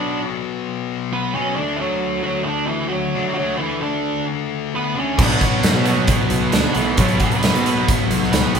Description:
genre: quiet-loud alternative rock.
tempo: 133 BPM.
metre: 4/4.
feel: straight.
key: B minor.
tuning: A4 = 438 Hz.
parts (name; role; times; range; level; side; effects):
octave-fuzz lead guitar; melody; 0.0-8.6 s; E3 to D5; -23 LUFS; right 4 dB; distortion.
thick fuzz guitar; riff; 0.0-8.6 s; B2 to D4; -23 LUFS; left 8 dB; distortion.
biting overdriven guitar; riff; 5.2-8.6 s; B2 to B3; -24 LUFS; right 8 dB; none.
overdriven electric guitar; riff; 5.2-8.6 s; B2 to B3; -25 LUFS; right 2 dB; none.
fuzz picked electric bass; bass; 5.2-8.6 s; B1 to B2; -22 LUFS; equal; overdrive.
big rock drum kit; drums; 5.2-8.6 s; crash cymbal, hi-hat, kick drum, snare drum; -18 LUFS; equal; none.
room: moderate large studio reverb, RT60 1.2 s.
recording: band playing live in one room.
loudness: -17 LUFS.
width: side -6 dB against mid.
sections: 0.0-8.6 A section.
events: none.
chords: 0.0 Bm; 1.6 D; 5.2 Bm.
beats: 0.23 0.68 1.13 | 1.58 2.03 2.48 2.93 | 3.38 3.83 4.29 4.74 | 5.19 5.64 6.09 6.54 | 6.99 7.44 7.89 8.34.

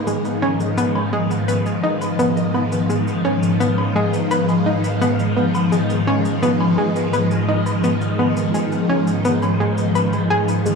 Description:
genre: ambient, sequencer-driven space music.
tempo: 85 BPM.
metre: 4/4.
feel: straight.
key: G# dorian.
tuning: A4 = 441 Hz.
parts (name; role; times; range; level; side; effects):
phased string machine; sustained chords; 0.0-10.8 s; G#2 to E#3; -18 LUFS; left 1 dB; ensemble chorus, phaser, shimmer reverb.
analog pluck; riff; 0.1-10.8 s; G#3 to B4; -21 LUFS; equal; chorus, tape echo, shimmer reverb.
shaker and woodblock; percussion; 0.1-10.8 s; none; -33 LUFS; equal; tape echo.
room: wet cathedral reverb, RT60 6.4 s.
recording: in a vast, echoing space, studio ambience.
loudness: -16 LUFS.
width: side -4 dB against mid.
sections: 0.0-10.8 A section.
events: none.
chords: 0.0 G#5.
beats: | 0.07 0.78 1.49 2.19 | 2.90 3.60 4.31 5.01 | 5.72 6.43 7.13 7.84 | 8.54 9.25 9.96 10.66.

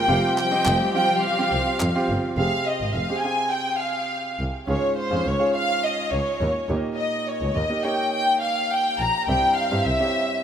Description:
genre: piano-driven pop.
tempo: 104 BPM.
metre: 4/4.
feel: straight.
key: F minor.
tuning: A4 = 440 Hz.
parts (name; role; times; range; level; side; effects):
warm studio violin section; melody; 0.0-10.4 s; C5 to Bb5; -22 LUFS; left 1 dB; none.
clear concert grand piano; accompaniment; 0.0-10.4 s; G2 to G5; -27 LUFS; right 2 dB; none.
warm studio string section; sustained chords; 0.0-2.4 s; F3 to G4; -29 LUFS; left 1 dB; none.
warm double bass; bass; 0.1-9.9 s; F1 to G2; -26 LUFS; equal; none.
group handclap; percussion; 0.4-1.9 s; none; -33 LUFS; left 2 dB; none.
room: moderate lush hall reverb, RT60 2.9 s.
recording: rough home demo mix.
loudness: -20 LUFS.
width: side -8 dB against mid.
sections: 0.0-2.4 A section; 2.4-10.4 B section.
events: none.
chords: 0.1 Fsus2; 2.4 Fmadd9; 4.7 Db; 6.7 Eb; 9.3 C.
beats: | 0.09 0.66 1.23 1.81 | 2.38 2.95 3.53 4.10 | 4.68 5.25 5.83 6.40 | 6.98 7.55 8.13 8.70 | 9.28 9.85 10.43.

